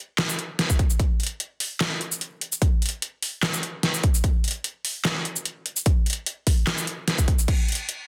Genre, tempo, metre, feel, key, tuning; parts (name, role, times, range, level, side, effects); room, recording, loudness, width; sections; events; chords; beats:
dubstep; 148 BPM; 4/4; swing 54% on 16ths, half-time
dubstep drum kit; drums; 0.2-8.0 s; crash cymbal, handclaps, hi-hat, shaker, snare drum; -28 LUFS; equal; overdrive
electronic kick drum; drums; 0.7-7.6 s; -23 LUFS; equal; overdrive
light reverb; dense, heavily limited modern master; -25 LUFS; mono
0.0-8.1 A section
0.18 0.59 | 0.99 1.40 1.81 2.21 | 2.62 3.02 3.43 3.83 | 4.24 4.64 5.05 5.45 | 5.86 6.26 6.67 7.08 | 7.48 7.89